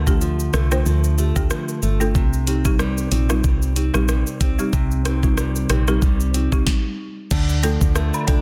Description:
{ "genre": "dancehall", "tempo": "93 BPM", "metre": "4/4", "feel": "swing 56% on 16ths", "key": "unclear", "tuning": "A4 = 442 Hz", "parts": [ { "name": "fingerpicked plugged-in steel-string acoustic guitar", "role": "arpeggios", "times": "0.0-8.4 s", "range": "C3 to D4", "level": "-27 LUFS", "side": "equal", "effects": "none" }, { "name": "woody FM bass", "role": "bass", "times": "0.0-8.4 s", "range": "G1 to D2", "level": "-23 LUFS", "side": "equal", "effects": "none" }, { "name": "folk marimba with medium mallets", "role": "accompaniment", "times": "0.1-8.4 s", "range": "G3 to C5", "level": "-28 LUFS", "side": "equal", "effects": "sidechain pumping" }, { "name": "afro-pop drum kit", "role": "drums", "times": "0.1-8.4 s", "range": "crash cymbal, hi-hat, kick drum, rim click, shaker, snare drum", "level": "-24 LUFS", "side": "equal", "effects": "soft clipping on snare" }, { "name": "cabasa and woodblock", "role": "percussion", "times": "7.6-8.4 s", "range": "none", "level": "-31 LUFS", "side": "equal", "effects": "none" } ], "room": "little or no reverb", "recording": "dense, heavily limited modern master", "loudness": "-20 LUFS", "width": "mono", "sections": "0.0-7.3 A section; 7.3-8.4 B section", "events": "stop 6.7-7.3", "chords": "0.0 Dm; 2.1 Cm; 7.3 Dm" }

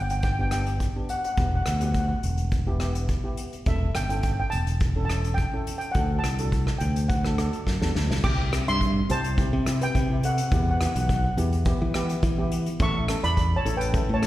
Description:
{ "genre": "calypso", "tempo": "105 BPM", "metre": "4/4", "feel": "straight", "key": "unclear", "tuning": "A4 = 442 Hz", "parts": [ { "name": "steel pan", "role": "melody", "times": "0.0-14.3 s", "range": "A4 to D6", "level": "-30 LUFS", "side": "equal", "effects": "slapback echo" }, { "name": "steel pan", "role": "accompaniment", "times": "0.0-14.3 s", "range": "B3 to A4", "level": "-34 LUFS", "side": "equal", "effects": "slapback echo" }, { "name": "modern bright fingered electric bass", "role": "bass", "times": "0.0-14.3 s", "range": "E1 to E3", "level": "-25 LUFS", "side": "equal", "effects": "none" }, { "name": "unplugged drum kit", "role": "drums", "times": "0.1-14.3 s", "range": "crash cymbal, hi-hat, kick drum, rim click, snare drum", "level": "-28 LUFS", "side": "equal", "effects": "none" } ], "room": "little or no reverb", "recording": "live gig heard through the venue's PA, recital hall reverb", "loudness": "-22 LUFS", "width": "side -15 dB against mid", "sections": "0.0-8.2 A section; 8.2-14.3 B section", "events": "drum fill 7.7-8.2", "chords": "0.0 G; 1.4 Em; 3.7 A7/E; 6.0 D; 8.2 C; 10.5 Em; 12.8 A" }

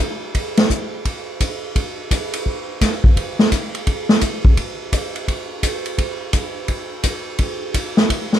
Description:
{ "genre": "jazz", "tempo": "170 BPM", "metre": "4/4", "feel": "swing 64% on 8ths", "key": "none", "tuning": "none", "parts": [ { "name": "swinging big-band drum kit", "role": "drums", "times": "0.3-8.4 s", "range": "hi-hat, kick drum, ride cymbal, snare drum", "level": "-17 LUFS", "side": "equal", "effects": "none" } ], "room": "little or no reverb", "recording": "dark, warm production", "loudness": "-17 LUFS", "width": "side -11 dB against mid", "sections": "0.0-8.4 A section", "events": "none", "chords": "none" }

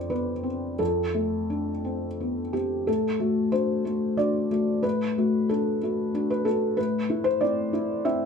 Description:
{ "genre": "neoclassical minimalist piano", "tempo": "85-96 BPM", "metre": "3/4", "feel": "rubato", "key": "unclear", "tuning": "A4 = 439 Hz", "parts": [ { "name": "felt-muted upright piano", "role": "solo", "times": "0.0-8.3 s", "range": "F2 to E5", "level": "-24 LUFS", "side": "left 1 dB", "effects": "none" } ], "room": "light reverb", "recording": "none", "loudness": "-24 LUFS", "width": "side -6 dB against mid", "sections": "0.0-2.9 A section; 2.9-8.3 B section", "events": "none", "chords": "0.0 Dm7/F; 2.9 D/A; 6.8 Amadd9" }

